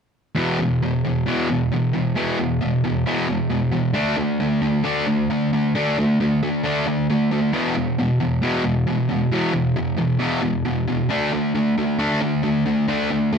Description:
rock; 134 BPM; 4/4; straight; A4 = 441 Hz
fuzz guitar; solo; 0.4-13.4 s; E2 to D4; -18 LUFS; equal; distortion
moderate small room reverb, RT60 0.6 s; -18 LUFS; side -6 dB against mid
0.4-13.4 A section
0.4 E5; 4.0 D5; 7.5 E5; 11.1 D5

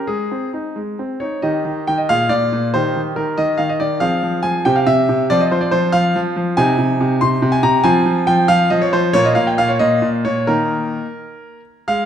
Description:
classical-period piano sonatina; 86-95 BPM (dotted quarters); 6/8; rubato; Eb major; A4 = 440 Hz
clear concert grand piano; solo; 0.0-12.1 s; Bb2 to C6; -14 LUFS; equal
moderate recital hall reverb, RT60 1.5 s; minimal, uncompressed stereo recording; -14 LUFS; side -9 dB against mid
0.0-1.4 A section; 1.4-11.9 B section
0.1 Ab; 1.4 Eb; 2.1 Bb7; 2.7 Eb; 4.0 Fm; 4.7 C; 5.3 F5; 6.6 Ab/C; 7.9 Fm; 9.1 Bb5; 10.5 Eb5

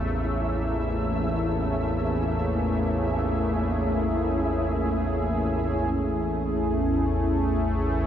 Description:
dark ambient drone; free time; A4 = 441 Hz
sweeping resonant pad; sustained chords; 0.0-8.1 s; A3 to G#4; -26 LUFS; equal; chorus
gamelan-type bossed gongs; arpeggios; 0.0-8.1 s; barely audible
analog drone; drone; 0.0-8.1 s; A1 to E2; -27 LUFS; equal; chorus
flickering grainy texture; texture; 0.0-8.1 s; C#4 to E5; -34 LUFS; equal; built-in reverb
moderate huge ambient reverb, RT60 8.0 s; nothing above 7.9 kHz; -23 LUFS; side -10 dB against mid
0.0-5.9 A section; 5.9-8.1 B section
0.0 C#m/A; 5.9 A

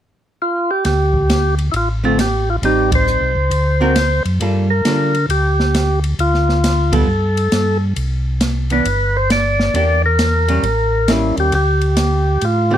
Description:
soul jazz organ trio; 135 BPM; 4/4; swing 65% on 8ths; D minor; A4 = 435 Hz
percussive tonewheel organ; melody; 0.4-12.8 s; E4 to D5; -17 LUFS; equal; slow rotary speaker
open jazz drum kit; drums; 0.8-12.6 s; hi-hat, kick drum, ride cymbal, snare drum; -22 LUFS; equal
mellow tonewheel organ; bass; 0.9-12.8 s; G1 to D3; -17 LUFS; equal; slow rotary speaker
archtop guitar, miked and amplified; accompaniment; 2.0-12.8 s; D3 to A#4; -20 LUFS; right 2 dB
light reverb; close, detailed microphones; -14 LUFS; side -10 dB against mid
0.8-12.8 A section
band accent 2.9, 6.9
0.0 N.C.; 0.8 Dm; 2.6 Am7b5; 3.5 Daug7; 4.4 Gm9; 6.2 Dm; 7.1 Gsus2; 8.0 Cmaj7sus2; 9.7 Em7b5; 10.6 A7b9; 11.5 Dm

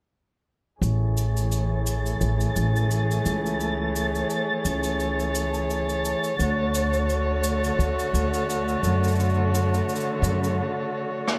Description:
folktronica; 86 BPM; 4/4; swing 56% on 16ths; A major; A4 = 440 Hz
dark string quartet; sustained chords; 0.8-11.4 s; D3 to C#5; -28 LUFS; equal; low-pass filter
upright bass; bass; 0.8-10.6 s; A1 to F#2; -27 LUFS; equal
cabasa and rim click; drums; 0.8-11.4 s; -36 LUFS; equal
flickering grainy texture; texture; 1.4-10.6 s; A6; -36 LUFS; equal; built-in reverb
light reverb; -25 LUFS; mono
0.8-11.4 A section
filter sweep on string quartet 0.8-11.4; break 10.6-11.4
0.8 Amaj7; 6.4 Dmaj7

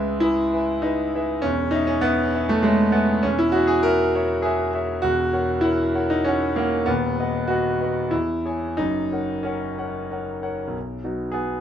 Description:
classical, romantic character piece for solo piano; 89-102 BPM; 3/4; rubato; B major from 3.2 s; A4 = 440 Hz
clear concert grand piano; solo; 0.0-11.6 s; D#1 to G#5; -20 LUFS; equal
moderate small room reverb, RT60 0.5 s; -20 LUFS; side -9 dB against mid
0.0-10.8 A section
0.0 C#m7; 1.4 C#m/E; 5.0 F#7/E; 6.9 B/D#; 8.1 C#m/E; 8.8 F#; 10.8 B

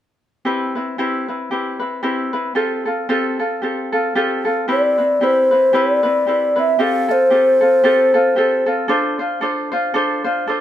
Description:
Hawaiian; 114 BPM; 4/4; swing 57% on 8ths; C major; A4 = 440 Hz
ukulele; accompaniment; 0.4-10.6 s; C4 to C5; -18 LUFS; equal
breathy bass ocarina; melody; 4.7-8.7 s; C5 to F5; -14 LUFS; equal
wet stone room reverb, RT60 0.9 s; band playing live in one room; -15 LUFS; side -11 dB against mid
0.5-4.7 A section; 4.7-10.6 B section
0.5 Cmaj7; 2.6 Fadd9; 4.7 Cmaj7; 6.8 Fadd9; 8.9 Dm7

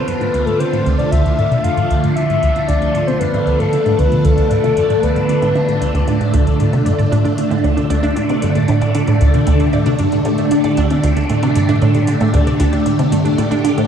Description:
ambient, sequencer-driven space music; 115 BPM; 4/4; straight; D dorian; A4 = 440 Hz
soft octave-layered synth lead; melody; 0.0-6.1 s; A4 to F5; -18 LUFS; left 2 dB; chorus, shimmer reverb, ping-pong delay
phased string machine; sustained chords; 0.0-13.9 s; D3 to G4; -18 LUFS; equal; ensemble chorus, phaser, shimmer reverb
resonant blip pluck; riff; 0.0-13.9 s; D2 to D3; -16 LUFS; equal; phaser, wide subtle chorus, ping-pong delay
wind-like tuned noise texture; texture; 0.0-13.9 s; F3 to A5; -29 LUFS; right 2 dB
electronic hi-hat and woodblock; percussion; 0.1-13.9 s; -36 LUFS; right 2 dB; overdrive
wide unison pluck; arpeggios; 6.3-13.8 s; D3 to D5; -22 LUFS; moving between left 1 dB and right 6 dB; auto-pan, ping-pong delay
wet concert hall reverb, RT60 2.2 s; dark, warm production; -13 LUFS; side -8 dB against mid
0.0-13.9 A section
fade-in on drum 0.0-13.9; filter sweep on synth arpeggio sound 0.0-13.9
0.0 Dm

